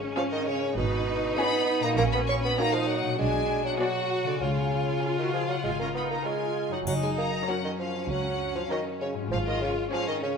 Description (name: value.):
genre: cinematic, playful, whimsical film cue.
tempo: 98 BPM.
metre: 4/4.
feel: straight.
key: F# major.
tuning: A4 = 441 Hz.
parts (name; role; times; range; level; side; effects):
concert harp; arpeggios; 0.0-10.4 s; F#2 to C#5; -34 LUFS; left 8 dB; none.
clear studio cello section; bass; 0.0-10.4 s; C#4 to F#4; -32 LUFS; right 2 dB; none.
rich studio double bass section; bass; 0.0-9.8 s; F#1 to C#2; -32 LUFS; right 3 dB; none.
warm studio viola section; accompaniment; 0.1-10.4 s; B3 to G#4; -36 LUFS; right 1 dB; none.
rich studio violin section; melody; 0.2-10.3 s; B4 to C#6; -33 LUFS; left 4 dB; none.
warm studio violin section; second line; 0.2-10.4 s; F#4 to D5; -38 LUFS; left 2 dB; none.
mellow bassoon; accompaniment; 0.2-10.4 s; B2 to C#4; -30 LUFS; right 3 dB; none.
triangle; percussion; 6.9-8.1 s; none; -41 LUFS; left 2 dB; none.
room: moderate scoring stage reverb, RT60 1.9 s.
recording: none.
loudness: -25 LUFS.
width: side -6 dB against mid.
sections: 0.0-10.4 A section.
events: none.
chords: 0.0 C#7/G#; 2.0 F#/A#; 3.2 G#m7b5/B; 4.4 C#; 6.9 F#; 9.3 C#/G#.